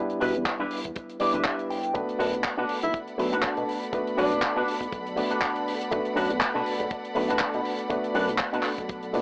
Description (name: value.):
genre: nu-disco, nu disco.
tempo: 121 BPM.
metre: 4/4.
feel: swing 55% on 16ths.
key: unclear.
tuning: A4 = 441 Hz.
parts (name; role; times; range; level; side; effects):
barky reed electric piano; accompaniment; 0.0-9.2 s; G3 to B4; -30 LUFS; equal; overdrive, sidechain pumping.
chorused synth bass; bass; 0.0-9.2 s; E1 to B2; -31 LUFS; equal; tube saturation, sidechain pumping.
tight funk drum kit; drums; 0.1-9.2 s; handclaps, hi-hat; -30 LUFS; equal; none.
electric guitar with an envelope filter; riff; 0.2-9.2 s; D4 to G5; -30 LUFS; equal; wide subtle chorus, analog delay.
kick drum; drums; 0.5-9.0 s; none; -35 LUFS; equal; none.
rich symphonic string section; sustained chords; 2.0-9.2 s; A4 to B5; -34 LUFS; equal; sidechain pumping.
warm tenor saxophone; melody; 2.8-4.7 s; D4 to E4; -30 LUFS; equal; analog delay.
room: light reverb, small room ambience.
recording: AM radio sound.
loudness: -24 LUFS.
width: side -35 dB against mid.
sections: 0.0-9.2 A section.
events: clean electric guitar fill 1.0-1.9.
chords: 0.0 Em7; 1.9 Bm7.